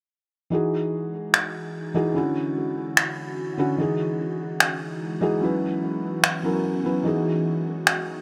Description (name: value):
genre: future bass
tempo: 147 BPM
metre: 4/4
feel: swing 55% on 16ths, half-time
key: E major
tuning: A4 = 440 Hz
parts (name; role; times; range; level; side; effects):
- felt-muted upright piano; accompaniment; 0.5-8.2 s; D3 to B4; -27 LUFS; equal; digital delay
- ethereal airy pad; sustained chords; 1.1-8.2 s; D3 to F#4; -34 LUFS; equal; ensemble chorus, built-in reverb
- electronic finger snaps; drums; 1.3-8.0 s; none; -21 LUFS; equal; overdrive
room: light reverb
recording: none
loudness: -24 LUFS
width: mono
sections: 0.5-8.2 A section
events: filter sweep on ambient pad 0.5-8.2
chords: 0.5 Emaj9; 2.2 Dmaj9; 3.8 Emaj9; 5.4 F#7sus4; 7.1 Emaj9